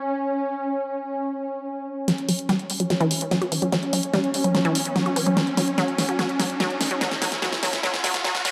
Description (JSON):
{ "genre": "psychedelic trance", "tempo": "146 BPM", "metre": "4/4", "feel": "straight", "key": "unclear", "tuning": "A4 = 437 Hz", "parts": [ { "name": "swarming drone", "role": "sustained chords", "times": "0.0-8.5 s", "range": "C#4", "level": "-30 LUFS", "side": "equal", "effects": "built-in reverb" }, { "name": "unison pluck", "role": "riff", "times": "2.1-8.5 s", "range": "E3 to F#4", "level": "-27 LUFS", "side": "equal", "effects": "dub echo" }, { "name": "big-room dance drum kit", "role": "drums", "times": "2.1-8.5 s", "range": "hi-hat, snare drum", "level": "-28 LUFS", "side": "equal", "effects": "none" }, { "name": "riser and swell", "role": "sound effects", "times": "3.2-8.5 s", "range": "none", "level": "-36 LUFS", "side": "equal", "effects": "none" } ], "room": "moderate lush hall reverb, RT60 2.0 s", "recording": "dark, warm production, high-pass filter", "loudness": "-24 LUFS", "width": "mono", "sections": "0.0-2.1 A section; 2.1-8.5 B section", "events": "build-up 2.1-8.5; drum fill 2.1-8.5; filter sweep on synth arpeggio sound 2.1-8.5; filter sweep 2.1-8.5; swell 7.8-8.5", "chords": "0.0 N.C.; 2.1 F#5", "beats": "0.03 | 0.44 0.85 1.26 1.67 | 2.08 2.49 2.90 3.31 | 3.72 4.13 4.55 4.96 | 5.37 5.78 6.19 6.60 | 7.01 7.42 7.83 8.24" }